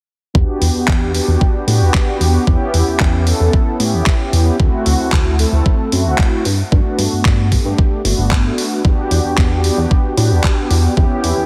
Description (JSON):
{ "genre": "nu-disco, nu disco", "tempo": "113 BPM", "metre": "4/4", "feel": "straight", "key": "E minor", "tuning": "A4 = 442 Hz", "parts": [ { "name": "mellow synth brass", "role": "accompaniment", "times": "0.3-11.5 s", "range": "A3 to A4", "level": "-21 LUFS", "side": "equal", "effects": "chorus, sidechain pumping, tape echo" }, { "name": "chorused synth bass", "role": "bass", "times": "0.3-11.5 s", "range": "G1 to A2", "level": "-18 LUFS", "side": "equal", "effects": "none" }, { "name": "electronic kick drum", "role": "drums", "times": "0.3-11.1 s", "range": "none", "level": "-16 LUFS", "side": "equal", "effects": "overdrive" }, { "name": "pop drum kit", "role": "drums", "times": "0.6-11.3 s", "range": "handclaps, hi-hat", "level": "-24 LUFS", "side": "equal", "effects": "overdrive" } ], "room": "light reverb", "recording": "heavily compressed radio sound, multiband compression", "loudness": "-15 LUFS", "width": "mono", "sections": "0.4-11.5 A section", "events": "none", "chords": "0.4 Em7; 2.5 A7/E; 4.6 D7; 6.5 Gmaj9; 8.8 Em7" }